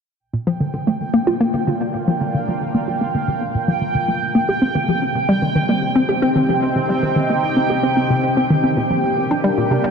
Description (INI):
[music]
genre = ambient, sequencer-driven space music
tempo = 112 BPM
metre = 4/4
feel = straight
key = unclear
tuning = A4 = 440 Hz
[part]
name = sweeping resonant pad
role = sustained chords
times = 0.2-9.9 s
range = Bb2 to G5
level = -23 LUFS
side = left 1 dB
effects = chorus, shimmer reverb
[part]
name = bubbling stepped-filter texture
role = texture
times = 0.5-9.9 s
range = G5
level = -24 LUFS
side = right 4 dB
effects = chorus, built-in reverb, shimmer reverb
[part]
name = hollow square pluck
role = riff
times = 0.3-9.9 s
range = Bb2 to G4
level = -18 LUFS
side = equal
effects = chorus, tape echo, shimmer reverb
[sound]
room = wet huge ambient reverb, RT60 7.4 s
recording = dark, warm production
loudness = -16 LUFS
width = side -6 dB against mid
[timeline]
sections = 0.2-9.9 A section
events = fade-in on analog synth pad 0.2-9.9; filter sweep on synth arpeggio sound 0.2-9.9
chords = 0.2 Bb; 4.5 Cm; 8.8 Gm